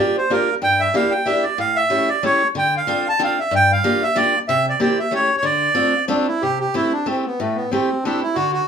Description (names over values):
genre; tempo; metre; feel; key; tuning
musette; 187 BPM; 3/4; swing 54% on 8ths; D minor; A4 = 441 Hz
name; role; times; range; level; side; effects
accordion; melody; 0.0-8.7 s; A3 to A5; -18 LUFS; right 2 dB; none
picked steel-string acoustic guitar; accompaniment; 0.0-8.6 s; G2 to A4; -21 LUFS; left 1 dB; none
room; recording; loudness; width
wet studio ambience, RT60 0.5 s; heard from further back in the room; -16 LUFS; side -7 dB against mid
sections
0.0-6.4 A section; 6.4-8.7 B section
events
none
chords
0.0 Gm7; 0.6 Em7b5/G; 1.6 A7; 2.6 Dm7; 3.5 Gm7; 4.5 C7; 5.1 A7; 5.4 Dm7; 6.4 C6; 7.4 Am7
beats
0.00 0.32 | 0.63 0.95 1.27 | 1.59 1.91 2.23 | 2.56 2.88 3.20 | 3.52 3.84 4.16 | 4.48 4.80 5.12 | 5.44 5.76 6.09 | 6.42 6.74 7.06 | 7.38 7.70 8.02 | 8.35 8.67